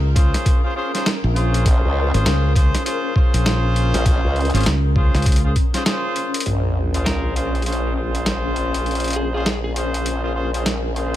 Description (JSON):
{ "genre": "glitch hop", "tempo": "100 BPM", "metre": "4/4", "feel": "swing 61% on 16ths", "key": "Bb minor", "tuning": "A4 = 440 Hz", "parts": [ { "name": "fingered electric bass", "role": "bass", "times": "0.0-5.5 s", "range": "Ab1 to Db2", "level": "-18 LUFS", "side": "equal", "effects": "none" }, { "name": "granular cloud pad", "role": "texture", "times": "0.0-11.2 s", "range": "Db4 to Bb5", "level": "-29 LUFS", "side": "left 1 dB", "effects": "built-in reverb, sidechain pumping" }, { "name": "clear horn section", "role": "stabs", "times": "0.2-11.2 s", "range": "Db4 to C5", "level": "-24 LUFS", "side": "left 1 dB", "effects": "sidechain pumping, ping-pong delay" }, { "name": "boom bap sampler-style drum kit", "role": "drums", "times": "0.2-11.1 s", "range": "hi-hat, snare drum", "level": "-24 LUFS", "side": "equal", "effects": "none" }, { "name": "electronic kick drum", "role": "drums", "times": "0.2-5.7 s", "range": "none", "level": "-16 LUFS", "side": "equal", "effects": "none" }, { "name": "formant-sweep wobble bass", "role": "bass", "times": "1.7-11.2 s", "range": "Bb1 to Db2", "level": "-23 LUFS", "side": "equal", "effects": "chorus, overdrive" }, { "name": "sub drop", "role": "sound effects", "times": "6.5-8.9 s", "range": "none", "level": "-25 LUFS", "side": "equal", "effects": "none" }, { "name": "lightly driven lead guitar", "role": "melody", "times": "7.1-9.7 s", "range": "Ab4 to Bb4", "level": "-32 LUFS", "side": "left 2 dB", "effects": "ping-pong delay" } ], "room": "digital ambience", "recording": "none", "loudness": "-17 LUFS", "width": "side -13 dB against mid", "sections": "0.0-6.5 A section; 6.5-11.2 B section", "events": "break 5.9-6.5; drum fill 6.2; impact 6.5-8.9", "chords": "0.0 Bbm7" }